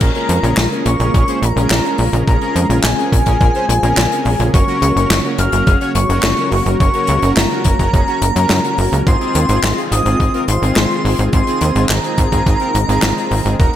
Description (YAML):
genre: synthwave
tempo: 106 BPM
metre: 4/4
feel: straight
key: unclear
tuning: A4 = 440 Hz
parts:
  - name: soft octave-layered synth lead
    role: melody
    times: 0.0-13.8 s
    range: Ab5 to F6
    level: -20 LUFS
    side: left 1 dB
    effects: chorus, tremolo, ping-pong delay
  - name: airy dreamy lead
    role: second line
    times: 0.0-13.8 s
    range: Ab5 to F6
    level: -26 LUFS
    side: equal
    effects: chorus, ping-pong delay
  - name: warm analog pad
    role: sustained chords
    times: 0.0-13.8 s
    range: Db3 to Gb4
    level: -22 LUFS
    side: equal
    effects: chorus, sidechain pumping
  - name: analog synth brass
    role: stabs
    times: 0.0-13.7 s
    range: C4 to Db5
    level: -22 LUFS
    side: equal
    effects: chorus, cassette tape
  - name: tight sequencer bass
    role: bass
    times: 0.0-13.7 s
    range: Eb1 to Gb2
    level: -16 LUFS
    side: equal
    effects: none
  - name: electronic kick drum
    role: drums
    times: 0.0-13.7 s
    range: none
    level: -14 LUFS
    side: equal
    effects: none
  - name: unplugged drum kit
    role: drums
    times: 0.0-13.8 s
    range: crash cymbal, handclaps, hi-hat, snare drum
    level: -20 LUFS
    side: left 2 dB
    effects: gated reverb
room: light reverb, small room reverb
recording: none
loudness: -12 LUFS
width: side -11 dB against mid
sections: 0.0-13.8 A section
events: none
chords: 0.0 Bbm7; 4.5 Gb; 9.1 Ab6